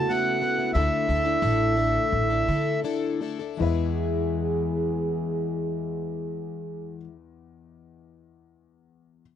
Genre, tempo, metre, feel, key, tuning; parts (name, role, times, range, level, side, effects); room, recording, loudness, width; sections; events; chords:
folk; 77-93 BPM; 4/4; straight; E major; A4 = 440 Hz
accordion; melody; 0.0-2.8 s; E5 to A5; -25 LUFS; equal
mellow French horn; second line; 0.0-7.0 s; E4 to G#4; -32 LUFS; right 15 dB
dark upright piano; accompaniment; 0.0-9.2 s; C#2 to E5; -35 LUFS; left 9 dB
picked plugged-in twelve-string acoustic guitar; accompaniment; 0.0-7.2 s; C#3 to A4; -30 LUFS; left 8 dB
dark brass ensemble; sustained chords; 0.0-7.0 s; C#3 to G#4; -35 LUFS; right 2 dB; stereo widening
upright bass; bass; 0.0-7.0 s; A1 to D3; -28 LUFS; equal
little or no reverb; dry, close 1970s-style studio recording; -23 LUFS; side -9 dB against mid
0.0-3.6 A section; 3.6-6.7 B section
slowing down 0.0-3.6
0.0 Aadd9/C#; 0.8 Dsus2; 3.6 E